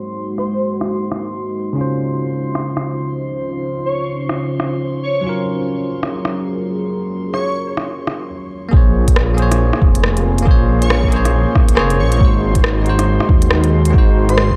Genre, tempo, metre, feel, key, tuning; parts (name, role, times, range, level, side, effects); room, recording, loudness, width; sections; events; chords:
future garage; 138 BPM; 4/4; swing 61% on 16ths; Bb minor; A4 = 442 Hz
bell-like tine electric piano; accompaniment; 0.0-14.6 s; Db3 to Db5; -24 LUFS; equal; sidechain pumping, analog delay
deep dark ambient pad; sustained chords; 0.0-14.6 s; Db3 to C6; -27 LUFS; equal; chorus, built-in reverb, vintage 12-bit sampler grit, sidechain pumping
drifting glass-harmonics texture; texture; 0.0-8.3 s; C6; -38 LUFS; equal; chorus, built-in reverb
airy dreamy lead; melody; 0.4-0.6, 3.9-7.6, 10.8-14.5 s; C5 to Db5; -27 LUFS; equal; chorus, analog delay
organic electronic drum kit; drums; 0.4-14.5 s; hi-hat, rim click; -24 LUFS; equal
swelling detuned saw bass; bass; 8.7-14.6 s; F1 to Eb2; -18 LUFS; equal; tube saturation, sidechain pumping
electronic kick drum; drums; 8.7-14.6 s; -15 LUFS; equal
light reverb, digital ambience; dark, warm production, low-pass filter; -16 LUFS; mono
0.0-8.7 A section; 8.7-14.6 B section
filter sweep on ambient pad 0.0-8.7; filter sweep 0.0-8.7; break 8.3-8.7
0.0 Ab7; 1.8 Dbmaj7; 5.3 Gbmaj7; 8.7 Bbm9; 12.2 Ab7